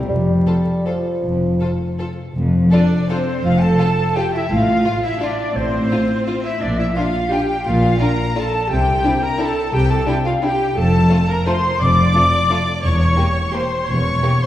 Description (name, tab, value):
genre	classical, orchestral ballroom waltz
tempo	150-191 BPM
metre	3/4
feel	rubato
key	F major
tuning	A4 = 441 Hz
part	mellow bassoon	accompaniment	0.0-2.0 s	F3 to G3	-23 LUFS	equal	none
part	rich chamber cello section	bass	0.0-14.2 s	E2 to C3	-20 LUFS	equal	none
part	rich chamber double bass section	bass	0.0-14.2 s	E1 to C2	-21 LUFS	equal	none
part	rich chamber violin section	melody	0.5-14.5 s	C5 to D6	-29 LUFS	left 2 dB	none
part	clear studio violin section	second line	0.5-14.3 s	A3 to A4	-27 LUFS	left 1 dB	none
part	rich chamber viola section	accompaniment	0.5-14.5 s	C4 to D5	-24 LUFS	right 1 dB	none
part	flute section	second line	2.7-14.5 s	C5 to D6	-21 LUFS	left 1 dB	none
room	wet concert hall reverb, RT60 2.0 s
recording	heard from further back in the room, vinyl crackle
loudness	-15 LUFS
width	side -12 dB against mid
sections	0.0-2.4 A section; 2.4-14.5 A section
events	none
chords	0.1 N.C.; 2.4 F; 4.5 F/A; 6.6 Bb; 8.7 C5; 10.8 F; 12.8 E5